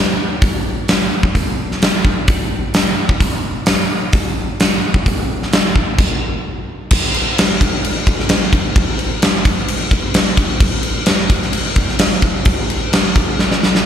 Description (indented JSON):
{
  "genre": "rock",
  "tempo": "130 BPM",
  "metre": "4/4",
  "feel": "straight",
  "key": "none",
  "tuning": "none",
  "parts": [
    { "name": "huge arena drum kit", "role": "drums", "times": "0.4-13.8 s", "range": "crash cymbal, hi-hat, kick drum, snare drum", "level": "-13 LUFS", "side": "equal", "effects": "none" }
  ],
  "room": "light reverb",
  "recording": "live gig heard through the venue's PA, recital hall reverb",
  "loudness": "-13 LUFS",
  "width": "side -9 dB against mid",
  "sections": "0.0-6.9 A section; 6.9-13.9 B section",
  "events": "stop 6.0-6.9; drum fill 13.4-13.9",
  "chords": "none"
}